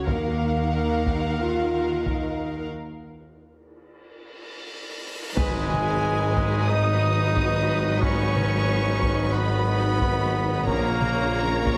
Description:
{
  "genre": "cinematic, epic orchestral film score",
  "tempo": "91 BPM",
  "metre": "4/4",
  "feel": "straight",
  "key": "unclear",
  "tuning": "A4 = 440 Hz",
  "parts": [
    { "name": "warm symphonic violin section", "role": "melody", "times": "0.0-11.8 s", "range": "Gb5 to Eb6", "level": "-34 LUFS", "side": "equal", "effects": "none" },
    { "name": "rich symphonic violin section", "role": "second line", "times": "0.0-11.8 s", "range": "Bb4 to F5", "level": "-37 LUFS", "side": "equal", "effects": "none" },
    { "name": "mellow French horn section", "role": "sustained chords", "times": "0.0-11.8 s", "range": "Bb3 to F4", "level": "-34 LUFS", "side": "equal", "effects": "none" },
    { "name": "rich symphonic cello section", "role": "bass", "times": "0.0-11.8 s", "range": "Ab2 to Eb3", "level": "-32 LUFS", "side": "equal", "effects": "none" },
    { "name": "rich symphonic double bass section", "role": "bass", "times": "0.0-11.8 s", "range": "Ab1 to Eb2", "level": "-32 LUFS", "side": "equal", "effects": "none" },
    { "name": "rich symphonic viola section", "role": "accompaniment", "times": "0.1-11.8 s", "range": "F3 to Bb4", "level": "-36 LUFS", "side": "equal", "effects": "none" },
    { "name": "taiko ensemble", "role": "drums", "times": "0.1-11.8 s", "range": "none", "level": "-32 LUFS", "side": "equal", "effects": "none" },
    { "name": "cymbal swell and impact", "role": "sound effects", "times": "4.1-8.0 s", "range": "none", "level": "-38 LUFS", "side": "equal", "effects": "none" },
    { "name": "mellow hollow silver concert flute", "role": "second line", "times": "5.4-11.7 s", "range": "Ab4 to Eb5", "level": "-36 LUFS", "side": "equal", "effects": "none" },
    { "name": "clear symphonic string section", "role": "sustained chords", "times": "5.4-11.8 s", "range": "Db4 to F5", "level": "-38 LUFS", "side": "equal", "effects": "none" },
    { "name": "mellow trombone section", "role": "sustained chords", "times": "5.4-11.8 s", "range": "Db3 to Gb3", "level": "-36 LUFS", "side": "equal", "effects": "none" },
    { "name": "bright trumpet", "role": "stabs", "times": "5.4-11.7 s", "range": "Ab3 to Eb4", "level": "-30 LUFS", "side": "equal", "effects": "none" },
    { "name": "clear tuba", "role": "bass", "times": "5.4-11.8 s", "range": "Ab1 to Bb1", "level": "-34 LUFS", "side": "equal", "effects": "none" }
  ],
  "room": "moderate scoring stage reverb, RT60 1.9 s",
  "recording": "heavily compressed radio sound",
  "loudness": "-24 LUFS",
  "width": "mono",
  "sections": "0.0-5.4 A section; 5.4-11.8 A section",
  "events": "break 2.7-5.4; cymbal swell 4.1-5.4; impact 5.4-8.0",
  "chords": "0.1 Ebmadd9; 5.4 Abm7; 10.7 Bbm"
}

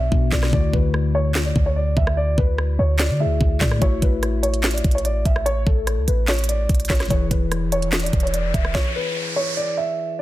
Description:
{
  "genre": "hip hop, trap",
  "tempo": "146 BPM",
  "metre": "4/4",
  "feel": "half-time",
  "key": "unclear",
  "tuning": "A4 = 440 Hz",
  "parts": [
    { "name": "dark concert grand piano", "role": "melody", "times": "0.0-10.2 s", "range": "A4 to E5", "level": "-25 LUFS", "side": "right 1 dB", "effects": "low-pass filter" },
    { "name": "mellow tine electric piano", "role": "accompaniment", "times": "0.0-10.2 s", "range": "B2 to E5", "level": "-28 LUFS", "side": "left 6 dB", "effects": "phaser, low-pass filter" },
    { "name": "clean 808-style bass", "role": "bass", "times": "0.0-8.7 s", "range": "E1 to D3", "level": "-22 LUFS", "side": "equal", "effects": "none" },
    { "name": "trap drum kit", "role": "drums", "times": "0.1-8.8 s", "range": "handclaps, hi-hat, kick drum, rim click, snare drum", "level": "-21 LUFS", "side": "equal", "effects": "none" },
    { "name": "riser", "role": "sound effects", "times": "7.8-9.6 s", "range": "none", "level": "-29 LUFS", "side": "equal", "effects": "none" }
  ],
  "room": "digital ambience",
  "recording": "dense, heavily limited modern master",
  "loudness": "-18 LUFS",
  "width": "side -15 dB against mid",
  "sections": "0.0-10.2 A section",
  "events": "break 0.0-3.8; riser 7.8-10.2; stop 8.7-10.2",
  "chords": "0.0 Bm; 0.5 Dadd9; 3.8 A6; 7.1 E"
}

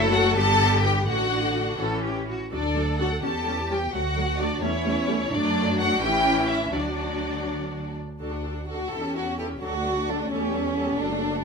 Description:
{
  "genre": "quick classical-period movement for string orchestra",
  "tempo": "85 BPM (dotted quarters)",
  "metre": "6/8",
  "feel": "rubato",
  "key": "D major",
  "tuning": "A4 = 444 Hz",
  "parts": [
    { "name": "rich chamber violin section", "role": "second line", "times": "0.0-11.4 s", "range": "C#4 to A4", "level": "-27 LUFS", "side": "left 2 dB", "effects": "none" },
    { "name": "rich studio viola section", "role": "accompaniment", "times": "0.0-11.4 s", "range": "D3 to A4", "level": "-29 LUFS", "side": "left 1 dB", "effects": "none" },
    { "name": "rich chamber double bass section", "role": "bass", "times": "0.0-11.4 s", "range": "F#1 to F#2", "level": "-29 LUFS", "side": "right 1 dB", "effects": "none" },
    { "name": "warm studio cello section", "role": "bass", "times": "0.0-11.4 s", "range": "G3 to A4", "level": "-31 LUFS", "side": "right 1 dB", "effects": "none" },
    { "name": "rich chamber violin section", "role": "melody", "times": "0.1-11.4 s", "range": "C#5 to A5", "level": "-29 LUFS", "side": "left 1 dB", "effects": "none" }
  ],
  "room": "moderate stone room reverb, RT60 1.1 s",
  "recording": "none",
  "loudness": "-22 LUFS",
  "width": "side -5 dB against mid",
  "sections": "0.0-8.2 A section; 8.2-11.4 B section",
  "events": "none",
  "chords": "0.4 G; 1.1 D/A; 1.8 A; 2.5 D; 3.2 A7/E; 3.9 D; 4.6 A7/E; 5.3 D/F#; 6.0 A7; 6.7 D; 8.9 A7/E; 9.6 D; 10.3 A7/E"
}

